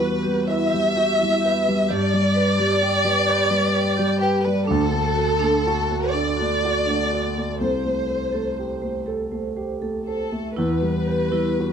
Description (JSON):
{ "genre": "neoclassical piano and strings", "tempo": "38-43 BPM (dotted quarters)", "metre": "6/8", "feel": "rubato", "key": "E minor", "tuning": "A4 = 440 Hz", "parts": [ { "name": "warm chamber violin section", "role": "melody", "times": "0.0-11.7 s", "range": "G4 to E5", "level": "-22 LUFS", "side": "left 1 dB", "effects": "plate reverb" }, { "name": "dark grand piano", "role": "accompaniment", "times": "0.0-11.7 s", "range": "C2 to B4", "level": "-23 LUFS", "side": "equal", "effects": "none" }, { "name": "vibraphone with medium hard mallets", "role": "arpeggios", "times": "0.2-11.5 s", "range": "D4 to E5", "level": "-28 LUFS", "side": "right 5 dB", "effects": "slapback echo" } ], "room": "light reverb", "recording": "dark, warm production", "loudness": "-19 LUFS", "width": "side -7 dB against mid", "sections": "0.0-11.7 A section", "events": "none", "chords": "0.0 Emadd9; 1.9 G; 4.7 D; 7.6 Am7/C; 10.6 Em", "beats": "0.46 | 1.87 3.27 | 4.67 6.14 | 7.60 9.07 | 10.56" }